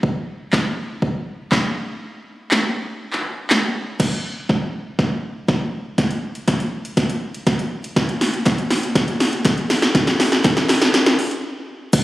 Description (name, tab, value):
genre	pop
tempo	121 BPM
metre	4/4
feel	straight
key	none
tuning	none
part	deep house drum kit	drums	0.0-12.0 s	crash cymbal, handclaps, hi-hat, kick drum, shaker, snare drum	-18 LUFS	equal	overdrive
part	group handclap	percussion	8.5-10.8 s	none	-32 LUFS	equal	none
room	moderate lush hall reverb, RT60 2.5 s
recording	recorded on a phone in the room, studio reverb, compression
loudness	-18 LUFS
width	side -16 dB against mid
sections	0.0-4.0 A section; 4.0-11.9 B section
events	kick muted 2.0-4.0; build-up 4.0-11.9; drum fill 4.0-11.4; break 11.4-11.9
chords	none